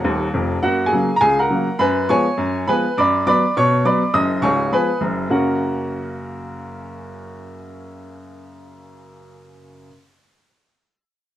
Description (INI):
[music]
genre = jazz, stride piano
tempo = 205 BPM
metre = 4/4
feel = swing 60% on 8ths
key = F# major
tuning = A4 = 442 Hz
[part]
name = bright upright piano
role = solo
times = 0.0-9.9 s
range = C#1 to D#6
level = -17 LUFS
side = equal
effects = none
[sound]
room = moderate club reverb, RT60 0.6 s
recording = worn, warbling old tape, cassette tape, warbly pitch drift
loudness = -16 LUFS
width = side -12 dB against mid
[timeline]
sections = 0.6-5.3 A section; 5.3-7.7 B section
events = upright piano fill 0.0-0.6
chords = 0.0 F#; 1.8 C#7/F#; 3.0 Bm/F#; 4.1 C#7; 5.3 F#